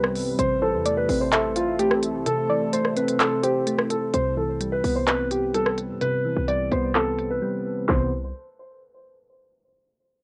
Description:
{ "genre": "hip hop, trap", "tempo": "128 BPM", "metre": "4/4", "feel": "half-time", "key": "C major", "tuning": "A4 = 439 Hz", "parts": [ { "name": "dark concert grand piano", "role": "melody", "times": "0.0-8.1 s", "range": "F4 to D5", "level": "-27 LUFS", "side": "equal", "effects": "low-pass filter, cassette tape, tape echo" }, { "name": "soft round pluck", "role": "second line", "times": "0.0-3.7 s", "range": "C5 to E5", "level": "-30 LUFS", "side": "equal", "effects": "chorus, cassette tape, tape echo" }, { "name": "soft electric-piano-like synth keys", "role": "accompaniment", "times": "0.0-8.1 s", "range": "C3 to C5", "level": "-30 LUFS", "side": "equal", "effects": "chorus, low-pass filter, cassette tape" }, { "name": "deep dark ambient pad", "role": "sustained chords", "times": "0.0-4.1 s", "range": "C3 to B4", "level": "-35 LUFS", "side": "equal", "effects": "chorus, built-in reverb, cassette tape" }, { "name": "short 808-style bass", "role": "bass", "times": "0.0-8.3 s", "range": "A1 to G2", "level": "-34 LUFS", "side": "equal", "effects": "none" }, { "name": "trap drum kit", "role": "drums", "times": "0.0-8.0 s", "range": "handclaps, hi-hat, kick drum, rim click, snare drum", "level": "-28 LUFS", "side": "equal", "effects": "cassette tape" } ], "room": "light reverb", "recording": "home recording on cassette, low-pass filter", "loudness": "-24 LUFS", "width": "mono", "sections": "0.0-4.1 A section; 4.1-7.9 B section; 7.9-9.8 C section", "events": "kick muted 2.3-4.1; break 7.4-7.9", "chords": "0.4 Am; 4.1 Cmaj7" }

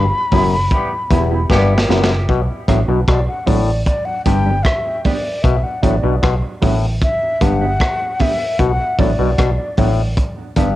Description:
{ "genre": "roots reggae", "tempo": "76 BPM", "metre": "4/4", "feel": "straight", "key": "B minor", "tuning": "A4 = 441 Hz", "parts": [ { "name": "breathy mellow concert flute", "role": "melody", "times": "0.0-9.8 s", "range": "D5 to B5", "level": "-21 LUFS", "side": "left 1 dB", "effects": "cassette tape, tape echo" }, { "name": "overdriven clav", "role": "riff", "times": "0.0-10.8 s", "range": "E2 to B2", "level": "-19 LUFS", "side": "left 5 dB", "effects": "phaser, cassette tape" }, { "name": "vintage muted fingered electric bass", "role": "bass", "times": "0.0-10.8 s", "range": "E1 to B1", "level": "-18 LUFS", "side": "equal", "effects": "tube saturation" }, { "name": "mellow electric guitar", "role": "accompaniment", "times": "0.3-10.7 s", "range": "F#3 to G4", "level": "-23 LUFS", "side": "right 6 dB", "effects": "cassette tape, tape echo" }, { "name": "crunchy breakbeat drum kit", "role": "drums", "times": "0.3-10.8 s", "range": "hi-hat, kick drum, rim click, snare drum", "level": "-19 LUFS", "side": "equal", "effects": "cassette tape" }, { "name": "dark horn section", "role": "second line", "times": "0.7-2.1 s", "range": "G3 to G4", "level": "-23 LUFS", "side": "equal", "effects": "cassette tape, tape echo" } ], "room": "moderate small room reverb, RT60 0.6 s", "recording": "home recording on cassette", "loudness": "-14 LUFS", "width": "side -15 dB against mid", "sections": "0.0-2.3 A section; 2.3-10.8 B section", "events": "band accent 0.0-2.3; drum fill 1.5-2.3; flute solo 2.3-10.8", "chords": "0.0 Em; 2.3 Bm; 3.9 G; 5.4 Bm; 7.0 G; 8.6 Bm; 10.2 G" }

